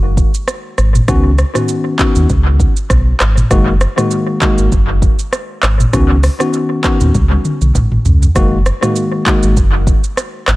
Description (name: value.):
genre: afrobeats.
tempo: 99 BPM.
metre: 4/4.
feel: swing 55% on 16ths.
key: F# major.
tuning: A4 = 442 Hz.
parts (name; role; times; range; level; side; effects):
sub bass with octave; bass; 0.0-10.6 s; F#1 to D#2; -12 LUFS; equal; none.
afro-pop drum kit; drums; 0.2-10.6 s; handclaps, hi-hat, kick drum, rim click, shaker, toms; -14 LUFS; equal; analog delay.
tine electric piano; accompaniment; 1.1-9.5 s; D#3 to F#4; -17 LUFS; left 2 dB; analog delay.
room: digital ambience.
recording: echo-heavy mix.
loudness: -10 LUFS.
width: side -19 dB against mid.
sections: 0.0-8.4 A section; 8.4-10.6 B section.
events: drum fill 7.1-8.4.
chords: 0.0 F#sus2; 1.1 C#9sus4; 3.5 F#69; 5.9 C#9sus4; 8.4 F#69.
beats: 0.48 | 1.08 1.69 2.30 2.90 | 3.51 4.11 4.72 5.33 | 5.93 6.54 7.14 7.75 | 8.36 8.96 9.57 10.18.